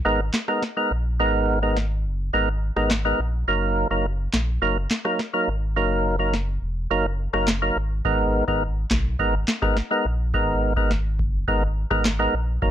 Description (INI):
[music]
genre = dancehall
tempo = 105 BPM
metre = 4/4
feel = straight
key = G# minor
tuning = A4 = 440 Hz
[part]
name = percussive tonewheel organ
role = accompaniment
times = 0.0-12.7 s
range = F#3 to A#4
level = -22 LUFS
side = right 1 dB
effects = overdrive, slow rotary speaker
[part]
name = sub bass with octave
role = bass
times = 0.1-12.7 s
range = E1 to B1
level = -25 LUFS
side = equal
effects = none
[part]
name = booming analog drum machine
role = drums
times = 0.3-12.7 s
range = handclaps, kick drum, rim click, snare drum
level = -24 LUFS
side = equal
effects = none
[sound]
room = digital ambience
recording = dry, gritty hardware recording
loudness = -20 LUFS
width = side -11 dB against mid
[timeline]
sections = 0.0-12.7 A section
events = none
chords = 0.0 G#madd9; 3.5 D#m/F#; 8.1 G#madd9